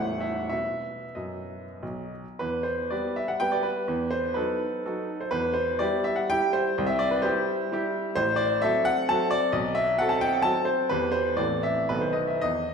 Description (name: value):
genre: classical, romantic triple-time dance for piano with dotted rhythms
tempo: 87-139 BPM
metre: 3/4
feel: rubato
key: E minor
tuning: A4 = 439 Hz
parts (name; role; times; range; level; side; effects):
- clear baby grand piano; solo; 0.0-12.7 s; A0 to A5; -24 LUFS; equal; none
room: wet recital hall reverb, RT60 1.8 s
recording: dark, warm production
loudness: -24 LUFS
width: side -6 dB against mid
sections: 0.0-2.4 A section; 2.4-12.7 B section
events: none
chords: 0.0 Am; 0.5 B; 2.4 Em; 3.9 B7/E; 5.3 Em; 6.8 C; 8.2 F#dim/A; 9.6 B5; 10.9 Em; 11.4 Am; 11.9 B7